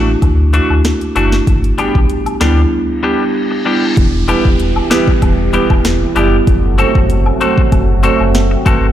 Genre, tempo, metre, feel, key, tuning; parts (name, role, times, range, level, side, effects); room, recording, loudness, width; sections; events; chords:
dancehall; 96 BPM; 4/4; straight; E minor; A4 = 445 Hz
marimba with soft mallets; accompaniment; 0.0-8.9 s; G3 to A5; -16 LUFS; right 3 dB; sidechain pumping
clean electric guitar; arpeggios; 0.0-8.9 s; E3 to A4; -19 LUFS; left 6 dB; spring reverb
sub bass with octave; bass; 0.0-8.9 s; E1 to D2; -14 LUFS; equal
afro-pop drum kit; drums; 0.2-8.8 s; hi-hat, kick drum, rim click, snare drum; -14 LUFS; equal
woodblock and cabasa; percussion; 0.2-8.8 s; -27 LUFS; left 4 dB
reverse cymbal and downlifter; sound effects; 3.0-8.9 s; -27 LUFS; left 1 dB
warm analog pad; sustained chords; 4.0-8.9 s; B2 to A4; -22 LUFS; left 1 dB; chorus, sidechain pumping
digital ambience; played on a big sound system in a bare room, large studio reverb; -10 LUFS; side -11 dB against mid
0.0-4.0 A section; 4.0-8.9 B section
break 2.7-4.0; reverse cymbal 3.0-4.0; marimba fill 7.7-8.9
0.0 Dadd9; 1.5 G; 4.0 Em; 6.5 F#dim